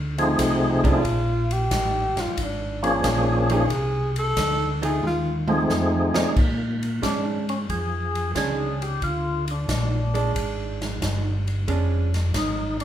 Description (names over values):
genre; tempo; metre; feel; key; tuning
soul jazz organ trio; 90 BPM; 4/4; swing 69% on 8ths; Bb mixolydian; A4 = 436 Hz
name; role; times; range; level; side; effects
tonewheel organ; bass; 0.0-12.8 s; F1 to Bb2; -25 LUFS; equal; chorus vibrato, slow rotary speaker
percussive tonewheel organ; melody; 0.2-12.8 s; F3 to G#4; -24 LUFS; equal; slow rotary speaker
swinging big-band drum kit; drums; 0.2-12.8 s; crash cymbal, hi-hat, kick drum, ride cymbal, snare drum, toms; -28 LUFS; equal; none
archtop guitar, miked and amplified; accompaniment; 0.8-12.1 s; F3 to Db5; -29 LUFS; right 5 dB; none
breathy tenor saxophone; melody; 0.9-5.3 s; D4 to A4; -26 LUFS; equal; none
room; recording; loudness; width
moderate large studio reverb, RT60 0.9 s; band playing live in one room; -21 LUFS; side -10 dB against mid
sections
0.0-6.4 A section; 6.4-12.8 B section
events
tenor saxophone solo 0.0-6.4; drum fill 5.0-6.4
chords
0.0 F7#9; 1.0 Bb7#9; 3.7 F7#9; 6.4 Bb7#9